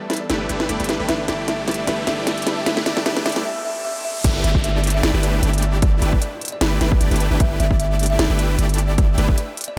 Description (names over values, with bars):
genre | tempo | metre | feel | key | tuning
future bass | 152 BPM | 4/4 | swing 54% on 16ths, half-time | G major | A4 = 441 Hz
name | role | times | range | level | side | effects
kalimba | melody | 0.0-9.8 s | B4 to E5 | -31 LUFS | equal | sidechain pumping, low-pass filter, tape echo
felt-muted upright piano | accompaniment | 0.0-3.4 s | G3 to B4 | -35 LUFS | equal | sidechain pumping, tape echo
airy breathy pad | sustained chords | 0.0-3.4 s | E3 to A4 | -38 LUFS | equal | none
riser and downlifter | sound effects | 0.3-7.4 s | none | -34 LUFS | equal | none
trap drum kit | drums | 0.1-9.7 s | crash cymbal, hi-hat, snare drum | -27 LUFS | equal | none
supersaw chords | riff | 0.3-9.4 s | A3 to D5 | -27 LUFS | equal | sidechain pumping, low-pass filter
long sustained 808-style bass | bass | 0.3-9.3 s | G1 | -24 LUFS | equal | sidechain pumping
electronic kick drum | drums | 4.2-9.4 s | none | -20 LUFS | equal | none
room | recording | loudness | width
light reverb | high-pass filter | -20 LUFS | mono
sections
0.0-4.2 A section; 4.2-9.8 B section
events
build-up 0.0-4.2; drum fill 0.0-3.5; riser 0.3-4.2; break 3.5-4.2; drop 4.2-9.8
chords
0.0 G69